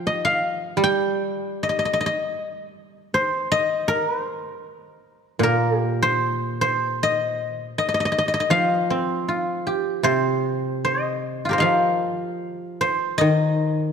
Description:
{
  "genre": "chinese traditional, Chinese solo plucked strings",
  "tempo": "77 BPM",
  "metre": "2/4",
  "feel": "rubato",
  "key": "C yu mode",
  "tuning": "A4 = 440 Hz",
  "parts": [
    { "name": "guzheng", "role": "solo", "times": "0.0-13.9 s", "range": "Bb2 to G5", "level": "-20 LUFS", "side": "equal", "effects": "none" }
  ],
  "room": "moderate concert hall reverb, RT60 2.2 s",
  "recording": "dark, warm production",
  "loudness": "-20 LUFS",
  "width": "side -6 dB against mid",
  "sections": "0.0-5.4 A section; 5.4-13.9 B section",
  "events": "none",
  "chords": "none",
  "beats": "0.02 | 0.80 1.57 | 2.32 3.08 | 3.85 4.63 | 5.42 6.21 | 6.99 7.76 | 8.52 9.27 | 10.04 10.82 | 11.63 12.43 | 13.21"
}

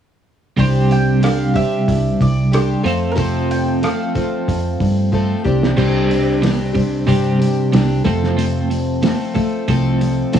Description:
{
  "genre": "folk rock and heartland rock",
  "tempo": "92 BPM",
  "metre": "4/4",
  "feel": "straight",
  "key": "unclear",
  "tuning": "A4 = 442 Hz",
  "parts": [
    { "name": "mandolin", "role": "melody", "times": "0.6-5.4 s", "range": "Bb4 to G5", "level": "-25 LUFS", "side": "right 2 dB", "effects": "analog delay" },
    { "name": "picked plugged-in twelve-string acoustic guitar", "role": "accompaniment", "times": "0.6-10.4 s", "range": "F2 to A4", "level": "-19 LUFS", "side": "left 4 dB", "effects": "cassette tape" },
    { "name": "twelve-string electric guitar", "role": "riff", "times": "0.6-10.4 s", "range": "C3 to A4", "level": "-20 LUFS", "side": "right 6 dB", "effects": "tremolo, cassette tape" },
    { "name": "hollow-body short-scale picked electric bass", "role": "bass", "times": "0.6-10.4 s", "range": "C2 to G2", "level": "-19 LUFS", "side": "right 1 dB", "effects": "none" },
    { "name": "cloth-damped thuddy drum kit", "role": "drums", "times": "0.6-10.4 s", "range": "crash cymbal, hi-hat, kick drum, rim click, snare drum", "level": "-22 LUFS", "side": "right 1 dB", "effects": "none" }
  ],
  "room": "light reverb",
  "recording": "home recording on cassette",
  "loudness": "-14 LUFS",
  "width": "side -9 dB against mid",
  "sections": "0.6-5.8 A section; 5.8-10.4 B section",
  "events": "drum fill 5.1-5.8",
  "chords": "0.6 Csus2; 2.8 F; 5.5 Csus2; 8.1 F",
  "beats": "| 0.58 1.23 1.87 2.52 | 3.17 3.82 4.47 5.12 | 5.78 6.43 7.08 7.73 | 8.38 9.03 9.69 10.34"
}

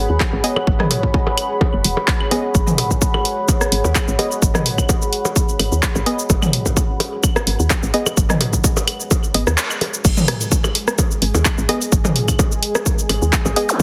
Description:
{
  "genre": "minimal techno",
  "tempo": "128 BPM",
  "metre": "4/4",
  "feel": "swing 54% on 16ths",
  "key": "G# minor",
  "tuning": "A4 = 439 Hz",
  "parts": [
    { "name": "woody FM bass", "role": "bass", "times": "0.0-13.8 s", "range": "D#1 to D#2", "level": "-22 LUFS", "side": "equal", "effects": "sidechain pumping" },
    { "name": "deep dark ambient pad", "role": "texture", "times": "0.0-10.0 s", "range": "G#4 to B5", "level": "-27 LUFS", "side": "equal", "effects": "chorus, built-in reverb, sidechain pumping" },
    { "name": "electronic kick drum", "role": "drums", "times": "0.2-13.8 s", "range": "none", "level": "-21 LUFS", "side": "equal", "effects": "overdrive" },
    { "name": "house drum kit", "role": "drums", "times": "0.2-13.8 s", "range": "cabasa, crash cymbal, handclaps, hi-hat", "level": "-23 LUFS", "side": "equal", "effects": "overdrive" },
    { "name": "minimal click drum kit", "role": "percussion", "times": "0.2-13.8 s", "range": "claves, percussion blips, rim click, toms", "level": "-24 LUFS", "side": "equal", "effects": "digital delay" },
    { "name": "filtered dub chord stab", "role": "stabs", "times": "0.4-13.7 s", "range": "B3 to D#5", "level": "-26 LUFS", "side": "equal", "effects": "chorus, digital delay" },
    { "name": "bubbling stepped-filter texture", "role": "texture", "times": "10.0-13.8 s", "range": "G#3 to G#4", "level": "-31 LUFS", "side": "equal", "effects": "chorus, built-in reverb, sidechain pumping" },
    { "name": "zap", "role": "sound effects", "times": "13.7-13.8 s", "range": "none", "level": "-20 LUFS", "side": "equal", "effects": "none" }
  ],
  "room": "light reverb",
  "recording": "heavily compressed radio sound, multiband compression",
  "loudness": "-18 LUFS",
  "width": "mono",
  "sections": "0.0-10.0 A section; 10.0-13.8 B section",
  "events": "band accent 9.6; drop 10.0-13.8",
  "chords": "0.0 G#m; 10.0 N.C.",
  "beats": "0.20 | 0.67 1.14 1.61 2.08 | 2.55 3.02 3.48 3.95 | 4.42 4.89 5.36 5.83 | 6.30 6.77 7.24 7.70 | 8.17 8.64 9.11 9.58 | 10.05 10.52 10.98 11.45 | 11.92 12.39 12.86 13.33 | 13.80"
}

